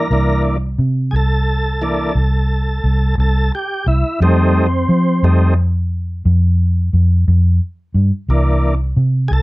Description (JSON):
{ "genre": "slow blues", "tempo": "59 BPM (dotted quarters)", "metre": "12/8", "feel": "straight", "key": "C mixolydian", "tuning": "A4 = 440 Hz", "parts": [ { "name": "tonewheel organ", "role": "sustained chords", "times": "0.0-9.4 s", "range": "E3 to Bb4", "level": "-18 LUFS", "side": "equal", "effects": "chorus vibrato" }, { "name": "vintage muted fingered electric bass", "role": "bass", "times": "0.1-9.4 s", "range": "C2 to F3", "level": "-14 LUFS", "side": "equal", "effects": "none" } ], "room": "light reverb", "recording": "none", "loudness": "-13 LUFS", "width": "side -20 dB against mid", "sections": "0.0-9.4 A section", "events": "tonewheel organ solo 0.0-9.4", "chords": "0.0 C9; 4.2 F9; 8.3 C9" }